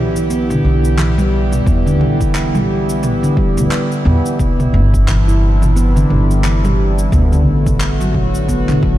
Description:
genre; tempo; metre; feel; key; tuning
organic downtempo; 88 BPM; 4/4; swing 59% on 16ths; E minor; A4 = 438 Hz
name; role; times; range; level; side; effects
warbly tape-like pad; sustained chords; 0.0-9.0 s; C3 to G4; -21 LUFS; right 1 dB; chorus, built-in reverb, phaser, sidechain pumping
handpan; arpeggios; 0.0-9.0 s; D3 to E4; -17 LUFS; equal; digital delay
upright bass; bass; 0.0-9.0 s; G1 to E2; -15 LUFS; equal; none
bronze singing bowl; texture; 0.0-9.0 s; D5; -41 LUFS; right 1 dB; none
deep house drum kit; drums; 0.2-8.8 s; cabasa, handclaps, toms; -22 LUFS; equal; none
electronic kick drum; drums; 1.7-9.0 s; none; -18 LUFS; equal; none
room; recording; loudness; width
small room ambience; dark, warm production; -12 LUFS; side -14 dB against mid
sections
0.0-9.0 A section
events
none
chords
0.0 Em7; 4.4 C; 7.1 D

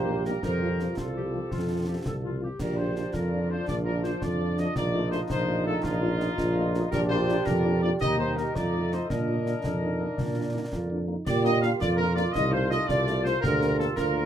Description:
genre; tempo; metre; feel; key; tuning
military-style march for wind band; 111 BPM (dotted quarters); 6/8; straight; Bb major; A4 = 440 Hz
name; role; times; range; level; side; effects
warm trumpet section; melody; 0.0-14.3 s; F4 to F5; -33 LUFS; left 1 dB; none
warm euphonium; second line; 0.0-14.3 s; D4 to G4; -33 LUFS; right 4 dB; none
warm woodwind section; second line; 0.0-14.3 s; F4 to F5; -35 LUFS; left 3 dB; none
clear trombone section; sustained chords; 0.0-14.3 s; F3 to F4; -36 LUFS; right 1 dB; none
warm tuba; bass; 0.0-14.3 s; Bb1 to Bb2; -28 LUFS; right 1 dB; none
dark French horn section; accompaniment; 0.1-14.2 s; F3 to Bb4; -34 LUFS; left 3 dB; none
concert snare drum, concert bass drum and clash cymbals; drums; 0.3-14.1 s; none; -34 LUFS; equal; none
bright flute section; second line; 11.3-14.3 s; A4 to F5; -33 LUFS; right 3 dB; none
room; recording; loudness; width
light reverb; none; -24 LUFS; side -10 dB against mid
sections
0.0-11.3 A section; 11.3-14.3 B section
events
none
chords
0.4 F; 2.6 Bb; 4.8 F7/Bb; 6.9 Bb; 8.0 Eb; 8.6 F7; 9.1 Bb; 12.3 F7/C; 13.4 Bb/D

